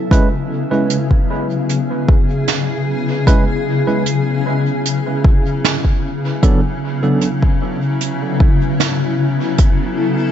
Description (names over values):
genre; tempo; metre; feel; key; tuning
ambient dub; 76 BPM; 4/4; straight; unclear; A4 = 440 Hz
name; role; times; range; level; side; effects
granular cloud pad; sustained chords; 0.0-10.3 s; C#3 to A4; -17 LUFS; left 2 dB; built-in reverb
tine electric piano; stabs; 0.1-7.3 s; F#3 to B4; -21 LUFS; right 3 dB; medium tremolo, dub echo
electronic kick drum; drums; 0.1-9.8 s; none; -13 LUFS; equal; none
jazz brush drum kit; drums; 0.1-9.7 s; hi-hat, snare drum; -21 LUFS; right 6 dB; dub echo
room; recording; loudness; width
light reverb, small room ambience; nothing above 7.7 kHz; -14 LUFS; side -10 dB against mid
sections
0.1-10.3 A section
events
none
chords
0.1 C#m7; 6.4 B7(no3)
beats
| 0.11 0.90 1.69 2.48 | 3.27 4.06 4.85 5.64 | 6.43 7.22 8.01 8.80 | 9.59